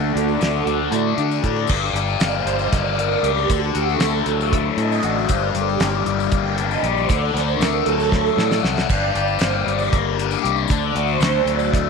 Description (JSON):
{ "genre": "psychedelic rock", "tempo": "233 BPM (eighths)", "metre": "7/8", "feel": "straight", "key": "G harmonic minor", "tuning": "A4 = 440 Hz", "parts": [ { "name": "string machine, violins", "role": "sustained chords", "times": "0.0-11.7 s", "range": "A3 to G5", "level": "-24 LUFS", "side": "right 13 dB", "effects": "ensemble chorus" }, { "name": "fuzz guitar", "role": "riff", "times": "0.0-11.9 s", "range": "G2 to G4", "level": "-21 LUFS", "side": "left 14 dB", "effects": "distortion, phaser" }, { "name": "growling fingered electric bass", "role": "bass", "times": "0.0-11.9 s", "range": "G1 to D3", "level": "-24 LUFS", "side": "right 2 dB", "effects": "overdrive" }, { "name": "damped 70s drum kit", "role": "drums", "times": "0.2-11.9 s", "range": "crash cymbal, hi-hat, kick drum, snare drum", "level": "-23 LUFS", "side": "right 1 dB", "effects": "none" }, { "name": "tambourine", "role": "percussion", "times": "0.3-11.7 s", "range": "none", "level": "-40 LUFS", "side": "left 14 dB", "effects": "none" } ], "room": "light reverb", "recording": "1960s-style stereo with parts hard left and right", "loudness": "-17 LUFS", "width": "side -5 dB against mid", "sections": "0.0-1.7 A section; 1.7-11.9 B section", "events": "string machine solo 1.7-11.9; drum fill 8.1-8.9", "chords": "0.0 D; 1.7 Gm; 3.5 D; 5.3 Gm; 7.1 D; 8.9 Gm; 10.7 D", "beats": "0.15 0.41 0.67 0.93 1.19 1.44 | 1.70 1.96 2.21 2.47 2.73 2.99 3.24 | 3.50 3.76 4.01 4.27 4.53 4.79 5.04 | 5.30 5.56 5.82 6.07 6.33 6.59 6.84 | 7.10 7.36 7.61 7.87 8.13 8.38 8.64 | 8.90 9.15 9.41 9.67 9.93 10.18 10.44 | 10.70 10.95 11.21 11.47 11.72" }